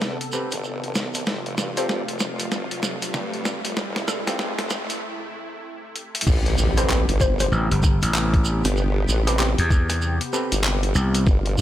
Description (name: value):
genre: glitch hop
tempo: 96 BPM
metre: 4/4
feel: swing 62% on 16ths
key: A minor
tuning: A4 = 440 Hz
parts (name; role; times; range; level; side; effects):
- warm analog pad; sustained chords; 0.0-11.6 s; C3 to A4; -31 LUFS; left 1 dB; chorus, sidechain pumping
- formant-sweep wobble bass; bass; 0.0-11.6 s; F1 to G2; -25 LUFS; equal; chorus, tube saturation, high-pass filter
- boom bap sampler-style drum kit; drums; 0.0-11.6 s; crash cymbal, handclaps, hi-hat, rim click, snare drum; -27 LUFS; equal; none
- shekere; percussion; 0.0-11.6 s; none; -33 LUFS; right 4 dB; none
- riser and impact; sound effects; 0.3-8.8 s; none; -32 LUFS; equal; none
- overdriven clav; stabs; 0.3-10.5 s; C4 to B4; -31 LUFS; equal; sidechain pumping, dub echo
- woody wave-folded pluck; melody; 1.8-9.5 s; G4 to C5; -31 LUFS; left 2 dB; lush chorus, cassette tape, dub echo
- electronic kick drum; drums; 6.3-11.4 s; none; -18 LUFS; equal; none
- gritty slap bass; bass; 7.5-11.2 s; G1 to E2; -20 LUFS; equal; overdrive
room: digital ambience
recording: high-pass filter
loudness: -20 LUFS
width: side -12 dB against mid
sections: 0.0-6.3 A section; 6.3-11.6 B section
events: build-up 0.0-6.3; drum fill 0.0-5.0, 6.0-6.3; filter sweep 0.0-6.3; riser 0.3-5.0; break 5.0-6.3; drop 6.3-11.6; impact 6.3-8.8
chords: 0.0 Am9; 1.3 G9sus4; 6.3 Am9